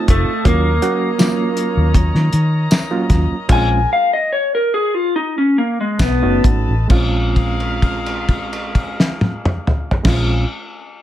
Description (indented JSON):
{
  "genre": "straight-eighth soul blues",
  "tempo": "65-81 BPM",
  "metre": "4/4",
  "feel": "straight",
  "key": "Bb minor",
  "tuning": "A4 = 442 Hz",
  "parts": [
    { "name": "overdriven reed electric piano", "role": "accompaniment", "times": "0.0-10.4 s", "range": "Gb3 to Gb4", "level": "-22 LUFS", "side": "right 4 dB", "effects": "fast tremolo, plate reverb" },
    { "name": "clear horn section", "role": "sustained chords", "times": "0.0-10.4 s", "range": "F4 to Bb5", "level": "-27 LUFS", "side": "left 1 dB", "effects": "none" },
    { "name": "electric guitar through a small old amp", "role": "melody", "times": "0.1-6.4 s", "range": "Ab3 to Ab5", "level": "-17 LUFS", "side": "left 1 dB", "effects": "none" },
    { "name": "vintage muted fingered electric bass", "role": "bass", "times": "0.1-10.4 s", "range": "F1 to Eb3", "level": "-17 LUFS", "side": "equal", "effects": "none" },
    { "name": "cloth-damped thuddy drum kit", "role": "drums", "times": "0.1-10.3 s", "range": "crash cymbal, hi-hat, kick drum, snare drum, tambourine, toms", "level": "-17 LUFS", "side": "equal", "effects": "none" }
  ],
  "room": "light reverb",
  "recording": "none",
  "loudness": "-14 LUFS",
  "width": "side -12 dB against mid",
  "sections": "0.0-6.9 A section; 6.9-10.6 B section",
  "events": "slowing down 0.5-6.9; held note 6.9-10.0",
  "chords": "0.5 Ebm7; 3.5 Bbm7; 6.0 B7; 6.9 Bbm7"
}